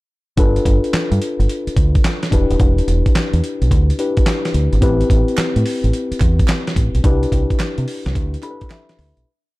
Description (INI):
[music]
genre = R&B, new jack swing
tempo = 108 BPM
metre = 4/4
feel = swing 66% on 16ths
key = unclear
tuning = A4 = 436 Hz
[part]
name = mellow tine electric piano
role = accompaniment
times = 0.4-9.3 s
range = C4 to B5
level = -21 LUFS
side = left 3 dB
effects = none
[part]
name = deep dub fingered electric bass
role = bass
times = 0.4-9.2 s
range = Eb1 to C3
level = -17 LUFS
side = equal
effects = none
[part]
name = dusty soul sampler-style drum kit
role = drums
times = 0.4-9.3 s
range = handclaps, hi-hat, kick drum, snare drum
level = -17 LUFS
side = equal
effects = none
[part]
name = group handclap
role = percussion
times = 5.4-8.9 s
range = none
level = -34 LUFS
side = right 10 dB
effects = none
[sound]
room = little or no reverb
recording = dark, warm production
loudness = -14 LUFS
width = side -20 dB against mid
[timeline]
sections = 0.4-9.3 verse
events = fade-out 7.0-9.3; tine electric piano fill 8.2-9.3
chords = 0.4 G7; 2.3 Em7; 4.8 Am7; 7.0 Cmaj7